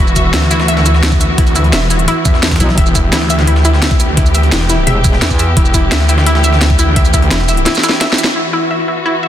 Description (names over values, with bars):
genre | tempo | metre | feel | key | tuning
dark technical drum and bass | 172 BPM | 4/4 | straight | E minor | A4 = 440 Hz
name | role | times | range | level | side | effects
dark chamber string section | sustained chords | 0.0-9.3 s | E3 to G4 | -19 LUFS | left 1 dB | sidechain pumping
wide unison pluck | arpeggios | 0.0-9.3 s | E4 to E5 | -17 LUFS | left 1 dB | sidechain pumping, ping-pong delay
snarling distorted saw bass | bass | 0.0-7.6 s | E1 to E2 | -13 LUFS | equal | distortion, overdrive
drum and bass drum kit | drums | 0.1-9.3 s | crash cymbal, hi-hat, shaker, snare drum | -17 LUFS | right 1 dB | low-pass filter on hats, low-pass filter on snare, low-pass filter on toms, low-pass filter on perc, low-pass filter on cymbals
breakbeat sampler-style drum kit | drums | 0.2-8.4 s | hi-hat, snare drum | -25 LUFS | equal | none
electronic kick drum | drums | 0.2-7.2 s | none | -12 LUFS | equal | overdrive
metallic wobble bass | bass | 2.6-2.8, 4.9-5.6 s | E1 to E2 | -13 LUFS | equal | chorus
room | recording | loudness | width
light reverb | dense, heavily limited modern master | -9 LUFS | side -11 dB against mid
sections
0.0-8.4 A section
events
drum fill 7.7-8.4; band accent 8.2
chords
0.0 Emadd9; 8.4 Esus2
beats
0.34 0.68 1.03 | 1.38 1.73 2.08 2.43 | 2.78 3.13 3.48 3.82 | 4.17 4.52 4.87 5.22 | 5.57 5.92 6.26 6.61 | 6.96 7.31 7.66 8.01 | 8.36 8.71 9.06